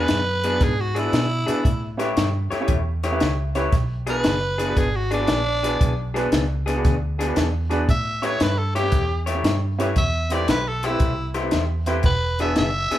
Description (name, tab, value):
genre	electric blues shuffle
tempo	116 BPM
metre	4/4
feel	swing 66% on 8ths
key	unclear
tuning	A4 = 439 Hz
part	growling tenor saxophone	melody	0.0-13.0 s	D4 to E5	-24 LUFS	right 1 dB	none
part	electric guitar through a small old amp	riff	0.0-13.0 s	E3 to C#5	-27 LUFS	left 3 dB	none
part	vintage muted fingered electric bass	bass	0.0-12.9 s	E1 to B2	-25 LUFS	equal	none
part	compact cocktail drum kit	drums	0.1-13.0 s	hi-hat, kick drum, snare drum	-23 LUFS	equal	none
part	warm grand piano	accompaniment	0.4-13.0 s	C4 to E5	-30 LUFS	right 3 dB	none
room	light reverb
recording	band playing live in one room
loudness	-19 LUFS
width	side -13 dB against mid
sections	0.0-13.0 A section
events	grand piano fill 3.0-3.7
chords	0.0 E7; 1.7 A7; 3.7 E7; 7.9 A7; 10.0 Am7; 12.0 E7